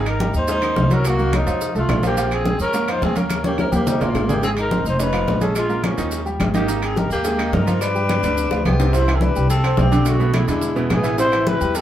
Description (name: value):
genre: Afro-Cuban jazz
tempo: 213 BPM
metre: 4/4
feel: straight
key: Ab major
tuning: A4 = 441 Hz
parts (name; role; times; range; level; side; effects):
- growling trumpet; melody; 0.0-11.8 s; Db4 to C5; -24 LUFS; left 1 dB; none
- breathy tenor saxophone; second line; 0.0-11.8 s; F3 to E4; -26 LUFS; left 1 dB; tape echo
- clear baby grand piano; accompaniment; 0.0-11.8 s; B2 to Db5; -24 LUFS; right 2 dB; none
- upright bass; bass; 0.0-11.8 s; F1 to G2; -22 LUFS; equal; none
- claves; percussion; 0.1-11.5 s; none; -35 LUFS; right 1 dB; none
- congas; percussion; 0.1-11.8 s; none; -25 LUFS; equal; none
- maracas; percussion; 0.1-11.8 s; none; -37 LUFS; right 5 dB; none
- timbales; percussion; 0.1-11.8 s; none; -30 LUFS; right 3 dB; none
- bongos; percussion; 0.2-11.8 s; none; -30 LUFS; left 3 dB; none
room: wet club reverb, RT60 0.7 s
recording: heard from further back in the room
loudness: -16 LUFS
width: side -11 dB against mid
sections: 0.0-8.9 A section; 8.9-11.8 B section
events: drum fill 3.3-4.4, 8.2-8.9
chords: 0.0 Abmaj9; 1.0 Cm7b5; 1.6 F; 2.2 Bbm9; 3.3 Eb7; 4.4 Ab; 5.0 Db13/F; 5.6 Bbm7; 6.1 Eb; 6.7 Absus2; 7.8 G7; 8.9 C69; 10.1 Bm7; 10.6 E7; 11.2 Am7